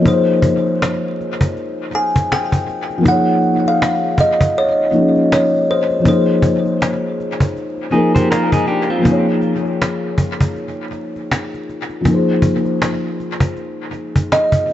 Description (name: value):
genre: lo-fi hip hop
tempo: 80 BPM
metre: 4/4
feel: swing 59% on 16ths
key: unclear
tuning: A4 = 440 Hz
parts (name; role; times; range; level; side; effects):
- kalimba; melody; 0.0-7.2, 14.3-14.7 s; C5 to Ab5; -17 LUFS; equal; dub echo
- felt-muted upright piano; accompaniment; 0.0-14.7 s; F3 to Db5; -18 LUFS; left 1 dB; cassette tape, dub echo
- cajon; drums; 0.1-14.7 s; none; -19 LUFS; equal; dub echo
- electric guitar through a small old amp; second line; 7.9-9.3 s; C4 to C5; -20 LUFS; equal; dub echo
room: light reverb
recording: echo-heavy mix, vinyl crackle, nothing above 7.9 kHz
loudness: -14 LUFS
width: side -12 dB against mid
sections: 0.0-14.7 A section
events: none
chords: 0.1 Fm7; 3.1 Eb5; 6.1 Fm7; 9.1 Eb5; 12.1 Fm7